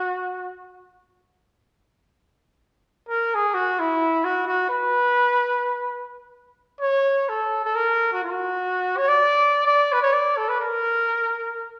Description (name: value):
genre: mexican folk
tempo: free time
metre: none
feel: none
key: unclear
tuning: A4 = 436 Hz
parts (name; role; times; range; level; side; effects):
- mellow trumpet; solo; 0.0-0.5, 3.1-11.8 s; E4 to D5; -22 LUFS; equal; none
room: wet recital hall reverb, RT60 1.3 s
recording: recorded in a church or concert hall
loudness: -22 LUFS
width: mono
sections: 0.0-11.8 A section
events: none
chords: none